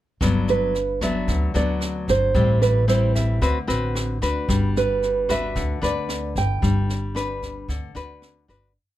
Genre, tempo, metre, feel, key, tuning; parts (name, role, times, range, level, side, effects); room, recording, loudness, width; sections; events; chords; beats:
bossa nova; 112 BPM; 4/4; straight; G major; A4 = 440 Hz
nylon-string guitar; accompaniment; 0.2-8.7 s; G2 to B4; -25 LUFS; left 3 dB
upright bass; bass; 0.2-8.7 s; G1 to D2; -24 LUFS; equal
jazz brush drum kit; drums; 0.2-8.6 s; kick drum, rim click, snare drum; -29 LUFS; equal
nylon-string guitar; melody; 0.5-8.2 s; B4 to G5; -23 LUFS; right 4 dB
little or no reverb; close, detailed microphones; -20 LUFS; side -14 dB against mid
0.2-8.8 A section
fade-out 6.6-8.8
0.2 Gmaj7; 2.4 Am7; 3.4 D13; 4.5 Gmaj7
| 0.21 0.74 1.28 1.81 | 2.35 2.89 3.42 3.96 | 4.49 5.02 5.56 6.09 | 6.62 7.16 7.69 8.22